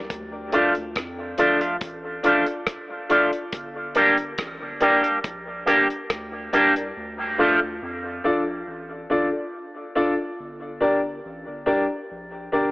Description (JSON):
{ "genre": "dub reggae", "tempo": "70 BPM", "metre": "4/4", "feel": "straight", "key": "D minor", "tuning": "A4 = 440 Hz", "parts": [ { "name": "soft dub sub bass", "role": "bass", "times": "0.0-12.7 s", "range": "G1 to F2", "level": "-40 LUFS", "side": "equal", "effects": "none" }, { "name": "damped 70s drum kit", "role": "drums", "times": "0.1-6.9 s", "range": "hi-hat, kick drum, rim click", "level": "-32 LUFS", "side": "equal", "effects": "none" }, { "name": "electric guitar with an envelope filter", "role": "accompaniment", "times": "0.5-7.6 s", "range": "F3 to G4", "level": "-22 LUFS", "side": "right 1 dB", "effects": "analog chorus, dub echo" }, { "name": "warm upright piano", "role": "stabs", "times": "0.5-12.7 s", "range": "D4 to D5", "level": "-24 LUFS", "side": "left 1 dB", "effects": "dub echo" } ], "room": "moderate plate reverb, RT60 3.1 s", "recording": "AM radio sound", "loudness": "-20 LUFS", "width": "side -22 dB against mid", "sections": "0.1-12.7 A section", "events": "break 7.0-12.7", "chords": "0.1 Dm; 3.5 Gm; 7.0 Dm; 10.4 Gm" }